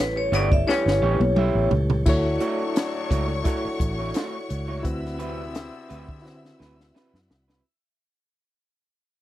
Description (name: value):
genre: lush 1970s-style soul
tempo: 86 BPM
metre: 4/4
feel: swing 54% on 16ths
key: D major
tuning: A4 = 443 Hz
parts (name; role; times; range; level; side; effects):
- vibraphone with hard mallets; melody; 0.0-1.7 s; B4 to E5; -24 LUFS; equal; none
- barky reed electric piano; accompaniment; 0.0-7.7 s; C4 to C#5; -29 LUFS; left 1 dB; overdrive, fast tremolo
- tonewheel organ; sustained chords; 0.0-7.6 s; C3 to C#5; -38 LUFS; right 1 dB; fast rotary speaker
- fingered electric bass; bass; 0.0-7.6 s; G1 to D3; -26 LUFS; equal; none
- electric guitar through a small old amp; riff; 0.2-7.6 s; F#3 to E5; -31 LUFS; right 6 dB; none
- bright trombone section; stabs; 0.3-7.2 s; G2 to E4; -33 LUFS; left 6 dB; none
- compact cocktail drum kit; drums; 0.3-7.6 s; crash cymbal, hi-hat, kick drum, snare drum, toms; -24 LUFS; equal; none
- warm symphonic string section; second line; 2.1-7.6 s; C#5 to E6; -36 LUFS; left 2 dB; none
room: little or no reverb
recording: dry, close 1970s-style studio recording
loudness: -21 LUFS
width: side -14 dB against mid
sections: 0.0-2.1 A section; 2.1-7.6 B section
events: drum fill 0.7-2.1, 6.2-7.6; fade-out 2.1-7.6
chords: 0.0 A9; 2.1 Dmaj9; 4.8 D13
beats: 0.67 1.37 | 2.06 2.76 3.46 4.15 | 4.85 5.55 6.24 6.94